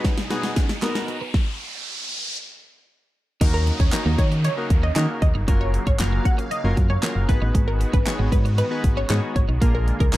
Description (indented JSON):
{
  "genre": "dance-pop",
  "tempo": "116 BPM",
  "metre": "4/4",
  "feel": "straight",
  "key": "Eb minor",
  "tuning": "A4 = 440 Hz",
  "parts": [
    { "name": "warm analog keys", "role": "accompaniment", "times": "0.0-10.2 s", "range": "Bb3 to Db5", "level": "-29 LUFS", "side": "left 2 dB", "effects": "chorus, sidechain pumping" },
    { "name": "filtered supersaw swell", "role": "sustained chords", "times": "0.0-10.2 s", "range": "Cb3 to F5", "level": "-34 LUFS", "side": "equal", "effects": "sidechain pumping" },
    { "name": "twelve-string electric guitar", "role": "riff", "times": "0.0-10.1 s", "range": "Ab3 to Gb4", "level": "-32 LUFS", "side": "right 7 dB", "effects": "wide subtle chorus" },
    { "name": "pop drum kit", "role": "drums", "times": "0.0-10.2 s", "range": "crash cymbal, handclaps, hi-hat, kick drum, snare drum", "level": "-21 LUFS", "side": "equal", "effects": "none" },
    { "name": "riser and downlifter", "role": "sound effects", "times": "0.0-7.5 s", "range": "none", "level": "-32 LUFS", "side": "right 1 dB", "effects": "none" },
    { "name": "group handclap", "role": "percussion", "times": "0.8-10.2 s", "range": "none", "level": "-34 LUFS", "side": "right 4 dB", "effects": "none" },
    { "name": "solid FM bass", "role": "bass", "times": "3.4-10.2 s", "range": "Gb1 to Eb3", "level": "-22 LUFS", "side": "equal", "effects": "sidechain pumping" },
    { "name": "wide unison pluck", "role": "melody", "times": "3.5-10.2 s", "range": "Bb4 to Gb5", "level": "-29 LUFS", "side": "equal", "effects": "sidechain pumping, tape echo" }
  ],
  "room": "little or no reverb",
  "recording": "dark, warm production",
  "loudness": "-19 LUFS",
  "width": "side -16 dB against mid",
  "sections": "0.0-3.4 A section; 3.4-10.2 B section",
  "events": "build-up 0.0-3.4; drum fill 0.0-1.3; riser 0.0-3.4; stop 1.3-3.4; drop 3.4-10.2",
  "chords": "0.0 Abm7; 1.3 N.C.; 3.4 Ebm7; 5.5 Gbmaj7; 7.3 Abm7; 9.6 Bb7"
}